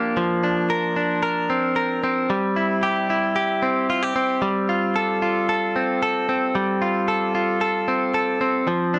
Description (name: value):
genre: indie pop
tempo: 113 BPM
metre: 4/4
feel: straight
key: unclear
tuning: A4 = 439 Hz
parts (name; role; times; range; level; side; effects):
- direct-recorded clean electric guitar; solo; 0.0-9.0 s; F3 to Bb4; -22 LUFS; equal; none
room: moderate studio reverb, RT60 0.6 s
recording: dark, warm production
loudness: -22 LUFS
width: mono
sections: 0.2-9.0 A section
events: none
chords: 0.2 Bbadd9; 2.3 C; 4.4 Fadd9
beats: | 0.17 0.70 1.24 1.77 | 2.30 2.83 3.36 3.89 | 4.42 4.96 5.49 6.02 | 6.55 7.08 7.62 8.15 | 8.68